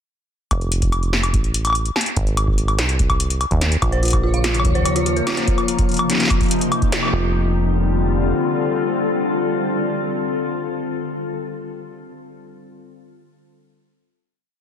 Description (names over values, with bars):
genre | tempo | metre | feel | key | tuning
IDM | 145 BPM | 4/4 | straight | F mixolydian | A4 = 440 Hz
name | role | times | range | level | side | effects
deep acid bass | bass | 0.5-8.3 s | F1 to Eb2 | -20 LUFS | equal | none
electro analog drum machine | drums | 0.5-7.1 s | hi-hat, snare drum, woodblock | -22 LUFS | left 1 dB | tape echo
electronic kick drum | drums | 0.5-6.9 s | none | -21 LUFS | equal | none
glassy FM pad | sustained chords | 4.3-10.8 s | C3 to A4 | -21 LUFS | left 3 dB | ensemble chorus, built-in reverb, vintage 12-bit sampler grit
dark detuned synth bell | arpeggios | 3.8-7.3 s | F4 to F5 | -25 LUFS | right 2 dB | chorus, ping-pong delay
twinkling granular texture | texture | 4.3-5.5 s | Db5 | -29 LUFS | right 1 dB | built-in reverb
room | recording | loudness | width
moderate lush hall reverb, RT60 1.7 s | dense, heavily limited modern master | -17 LUFS | side -8 dB against mid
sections
0.5-7.1 groove; 7.1-10.4 final chord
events
band accent 6.9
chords
0.5 F; 2.2 Ab5; 3.8 Bbmadd9; 5.5 Eb; 7.1 Fadd9